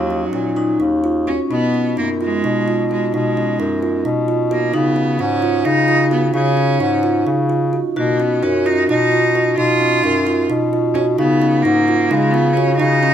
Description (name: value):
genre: contemporary instrumental, chamber music in an uneven meter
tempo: 261 BPM (eighths)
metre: 7/8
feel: straight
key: unclear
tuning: A4 = 440 Hz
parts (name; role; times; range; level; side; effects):
- bright cello; melody; 0.0-13.1 s; Gb3 to F4; -20 LUFS; right 4 dB; none
- vibraphone with medium hard mallets; second line; 0.0-13.1 s; B3 to F#4; -23 LUFS; left 3 dB; none
- kalimba; arpeggios; 0.0-13.1 s; Db4 to Gb4; -19 LUFS; right 3 dB; none
- warm bass clarinet; bass; 0.0-13.1 s; Eb2 to Db3; -19 LUFS; left 3 dB; none
room: light reverb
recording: close, detailed microphones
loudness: -14 LUFS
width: side -9 dB against mid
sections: 0.0-1.5 A section; 1.5-13.1 B section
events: none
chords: 0.0 Ebm7; 1.5 B6; 4.7 Db9; 8.0 B; 11.2 Db9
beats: 0.11 0.34 0.57 0.80 1.04 1.28 | 1.51 1.75 1.98 2.21 2.44 2.67 2.90 | 3.13 3.37 3.59 3.82 4.05 4.28 4.51 | 4.74 4.96 5.20 5.42 5.65 5.88 6.11 | 6.34 6.57 6.80 7.04 7.27 7.51 7.74 | 7.97 8.21 8.44 8.67 8.90 9.12 9.35 | 9.58 9.81 10.04 10.27 10.50 10.73 10.96 | 11.19 11.42 11.65 11.88 12.11 12.34 12.57 | 12.80 13.03